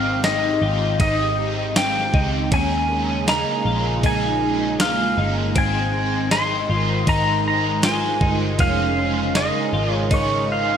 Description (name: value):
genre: dream pop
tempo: 79 BPM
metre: 4/4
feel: straight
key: unclear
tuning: A4 = 440 Hz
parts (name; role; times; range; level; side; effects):
- pedal steel guitar; melody; 0.0-10.8 s; Db5 to C6; -22 LUFS; equal; lush chorus, digital delay
- biting overdriven guitar; accompaniment; 0.0-10.8 s; F2 to C5; -28 LUFS; right 2 dB; harmonic tremolo, ensemble chorus
- phased analog pad; sustained chords; 0.0-10.8 s; Db3 to G4; -26 LUFS; right 1 dB; phaser, chorus
- twelve-string electric guitar; arpeggios; 0.0-10.8 s; C4 to F4; -26 LUFS; left 2 dB; ensemble chorus, digital delay
- vintage muted picked electric bass; bass; 0.0-10.8 s; F1 to Eb2; -25 LUFS; equal; none
- clean 12-bit digital drum machine; drums; 0.2-10.3 s; kick drum, ride cymbal, snare drum, tambourine; -22 LUFS; equal; gated reverb
- vibraphone with medium hard mallets; texture; 3.4-10.8 s; F4 to Eb5; -34 LUFS; right 3 dB; digital delay
room: light reverb, digital ambience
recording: bright 1980s-style digital production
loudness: -18 LUFS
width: side -8 dB against mid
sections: 0.0-10.8 A section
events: none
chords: 0.0 Abmaj7; 2.5 Eb7sus4; 5.6 Abmaj7; 8.6 Dbmaj7/F